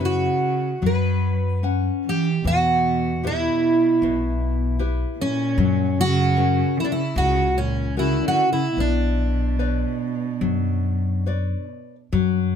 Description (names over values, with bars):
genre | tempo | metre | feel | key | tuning
fado-style ballad | 69-78 BPM | 4/4 | rubato | B harmonic minor | A4 = 440 Hz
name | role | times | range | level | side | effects
dark cello | second line | 0.0-11.7 s | A#2 to F#3 | -26 LUFS | right 6 dB | none
nylon-string guitar | accompaniment | 0.0-12.6 s | B2 to F#5 | -26 LUFS | left 9 dB | none
upright bass | bass | 0.0-12.6 s | B1 to F#2 | -24 LUFS | left 1 dB | none
fingerpicked twelve-string acoustic guitar | melody | 0.1-11.7 s | C#4 to B4 | -23 LUFS | right 1 dB | none
room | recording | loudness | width
light reverb | close, detailed microphones | -19 LUFS | side -8 dB against mid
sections
0.0-12.1 A section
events
none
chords
0.0 Bsus2/F#; 2.4 Em; 5.6 F#; 8.8 Bmadd9